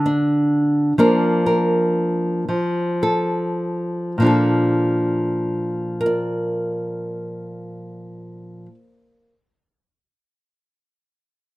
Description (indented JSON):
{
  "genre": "folk",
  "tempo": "33-44 BPM (dotted quarters)",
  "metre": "6/8",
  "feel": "straight",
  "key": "Bb major",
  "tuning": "A4 = 439 Hz",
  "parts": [
    { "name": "nylon-string guitar", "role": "accompaniment", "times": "0.0-9.4 s", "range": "Bb2 to D5", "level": "-18 LUFS", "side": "equal", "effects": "none" }
  ],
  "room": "little or no reverb",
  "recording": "close, detailed microphones",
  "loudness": "-18 LUFS",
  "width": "side -18 dB against mid",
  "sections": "0.0-4.2 A section; 4.2-7.8 B section",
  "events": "slowing down 0.0-4.2",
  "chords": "0.0 N.C.; 1.0 Bb/F; 2.5 F; 4.2 Bbmaj7"
}